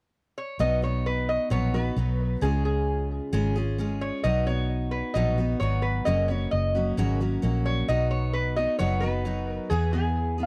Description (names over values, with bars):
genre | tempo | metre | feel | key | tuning
honky-tonk and classic country | 132 BPM | 4/4 | straight | B major | A4 = 440 Hz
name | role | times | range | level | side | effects
lap resonator guitar | melody | 0.4-10.4 s | G#4 to D#5 | -32 LUFS | equal | tape echo
picked steel-string acoustic guitar | accompaniment | 0.6-10.5 s | F#2 to G#4 | -32 LUFS | equal | none
vintage muted fingered electric bass | bass | 0.6-10.5 s | F#1 to E2 | -29 LUFS | equal | none
clear upright piano | second line | 10.4-10.5 s | E#5 | -27 LUFS | equal | none
room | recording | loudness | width
light reverb | dry, close 1970s-style studio recording | -26 LUFS | mono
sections
0.6-10.5 A section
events
none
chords
0.0 N.C.; 0.6 B; 2.4 C#; 4.2 B; 6.1 F#; 7.9 B; 9.7 E